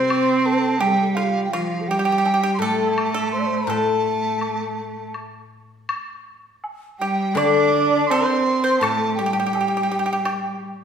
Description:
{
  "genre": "chinese traditional, Chinese chamber ensemble",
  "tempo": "83 BPM",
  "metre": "4/4",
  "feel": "rubato",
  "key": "G shang mode",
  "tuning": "A4 = 438 Hz",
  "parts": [
    { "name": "mellow hollow large dizi", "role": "melody", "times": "0.0-10.5 s", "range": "F5 to D6", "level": "-24 LUFS", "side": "right 2 dB", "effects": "none" },
    { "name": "mellow hollow xiao", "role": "second line", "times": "0.0-10.6 s", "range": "F4 to D5", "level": "-27 LUFS", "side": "left 4 dB", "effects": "none" },
    { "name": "pipa", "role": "second line", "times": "0.0-10.6 s", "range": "F4 to D5", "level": "-26 LUFS", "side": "right 2 dB", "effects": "none" },
    { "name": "rich cello", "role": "second line", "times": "0.0-10.6 s", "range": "F3 to D4", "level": "-23 LUFS", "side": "right 3 dB", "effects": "none" },
    { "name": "guzheng", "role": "accompaniment", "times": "0.0-10.8 s", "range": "A2 to A4", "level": "-26 LUFS", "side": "left 8 dB", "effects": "none" },
    { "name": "woodblock", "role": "percussion", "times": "0.1-10.4 s", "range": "none", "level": "-30 LUFS", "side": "left 2 dB", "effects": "none" }
  ],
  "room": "wet recital hall reverb, RT60 1.5 s",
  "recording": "recorded in a church or concert hall",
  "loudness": "-18 LUFS",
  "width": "side -8 dB against mid",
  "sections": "0.0-10.8 A section",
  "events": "none",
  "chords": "none"
}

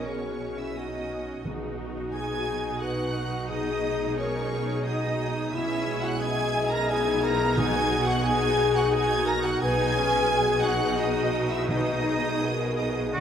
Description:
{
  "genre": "cinematic",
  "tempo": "88 BPM",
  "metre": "3/4",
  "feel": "rubato",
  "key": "B major",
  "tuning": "A4 = 441 Hz",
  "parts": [
    { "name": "rich symphonic violin section", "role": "melody", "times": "0.0-13.2 s", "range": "F#5 to A#6", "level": "-34 LUFS", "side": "right 2 dB", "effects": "none" },
    { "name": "dark clarinet", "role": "second line", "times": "0.0-13.2 s", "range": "C#4 to A#4", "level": "-33 LUFS", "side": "left 2 dB", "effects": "none" },
    { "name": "hollow small flute group", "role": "second line", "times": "0.0-13.2 s", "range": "C#5 to A#5", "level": "-33 LUFS", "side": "right 2 dB", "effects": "none" },
    { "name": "warm symphonic violin section", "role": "second line", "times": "0.0-13.2 s", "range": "C#5 to A#5", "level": "-34 LUFS", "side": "right 1 dB", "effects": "none" },
    { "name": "rich symphonic viola section", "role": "accompaniment", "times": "0.0-13.2 s", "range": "A3 to G#4", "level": "-32 LUFS", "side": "right 1 dB", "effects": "none" },
    { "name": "mellow French horn section", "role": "sustained chords", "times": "0.0-13.2 s", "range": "F#3 to D#5", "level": "-30 LUFS", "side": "left 5 dB", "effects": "none" },
    { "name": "concert harp", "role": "arpeggios", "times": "0.0-13.2 s", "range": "B2 to G#4", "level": "-36 LUFS", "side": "left 7 dB", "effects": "none" },
    { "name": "clear symphonic double bass section", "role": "bass", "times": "0.0-13.2 s", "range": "B1 to D2", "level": "-35 LUFS", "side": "right 3 dB", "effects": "none" },
    { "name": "warm symphonic cello section", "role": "bass", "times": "0.0-13.2 s", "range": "B2 to D3", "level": "-33 LUFS", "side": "right 4 dB", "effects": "none" },
    { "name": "timpani", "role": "percussion", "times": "0.0-2.4, 7.6-8.6, 11.7-12.7 s", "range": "B2", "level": "-35 LUFS", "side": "equal", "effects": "none" },
    { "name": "clear oboe", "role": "second line", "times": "13.1-13.2 s", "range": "F#4", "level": "-29 LUFS", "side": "right 2 dB", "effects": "none" }
  ],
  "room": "wet scoring stage reverb, RT60 1.9 s",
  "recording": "none",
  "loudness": "-24 LUFS",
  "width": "side -8 dB against mid",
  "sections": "0.0-13.2 A section",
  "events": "none",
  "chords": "0.0 F#6/B; 1.4 B6; 3.5 G#m/B; 5.5 C#madd9/B; 7.6 F#6/B; 9.6 B6; 11.7 G#m/B"
}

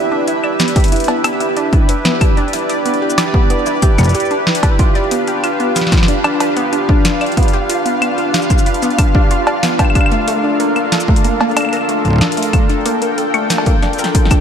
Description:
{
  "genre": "IDM",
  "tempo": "93 BPM",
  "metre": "4/4",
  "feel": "straight",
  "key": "unclear",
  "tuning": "A4 = 438 Hz",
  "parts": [
    { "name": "warm analog pad", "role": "sustained chords", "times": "0.0-14.4 s", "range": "D4 to G5", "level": "-17 LUFS", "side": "equal", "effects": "chorus, vintage 12-bit sampler grit" },
    { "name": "warbly dusty pluck", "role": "arpeggios", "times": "0.0-14.4 s", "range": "A3 to D5", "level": "-20 LUFS", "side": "right 1 dB", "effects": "chorus, tape echo" },
    { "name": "electro analog drum machine", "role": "drums", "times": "0.3-14.4 s", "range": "claves, cowbell, hi-hat, shaker, snare drum", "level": "-19 LUFS", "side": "left 1 dB", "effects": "ping-pong delay" },
    { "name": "electronic kick drum", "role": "drums", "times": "0.8-14.4 s", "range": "none", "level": "-12 LUFS", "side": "equal", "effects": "none" },
    { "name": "flickering grainy texture", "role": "texture", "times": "5.2-14.4 s", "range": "F5", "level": "-26 LUFS", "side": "right 1 dB", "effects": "built-in reverb, sidechain pumping" }
  ],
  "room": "moderate lush hall reverb, RT60 1.7 s",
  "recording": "dreamy mix soaked in reverb",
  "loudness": "-12 LUFS",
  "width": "side -8 dB against mid",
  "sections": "0.0-14.4 A section",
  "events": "drum fill 13.8-14.4",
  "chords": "0.0 Em7; 4.8 G7; 10.0 Bbmaj7"
}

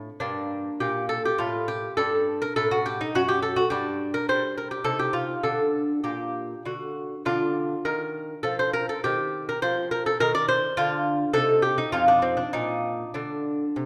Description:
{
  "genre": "classical, baroque-style dance for lute",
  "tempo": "102 BPM",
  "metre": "3/4",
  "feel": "rubato",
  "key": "G minor, Bb major from 7.3 s",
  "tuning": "A4 = 440 Hz",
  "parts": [
    { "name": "lute", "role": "solo", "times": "0.0-13.9 s", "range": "F2 to D5", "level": "-26 LUFS", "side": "equal", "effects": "none" }
  ],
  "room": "wet recital hall reverb, RT60 1.6 s",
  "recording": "none",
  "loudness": "-26 LUFS",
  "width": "mono",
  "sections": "0.2-13.9 A section",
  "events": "none",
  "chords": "0.2 Gm; 2.0 D/G; 3.7 G5; 4.9 Cmadd11; 5.5 Gm/D; 6.7 D; 7.3 Bb/D; 9.0 Cm/Eb; 10.8 N.C.; 11.3 Cm; 11.9 Cmadd11/F; 12.5 Bb"
}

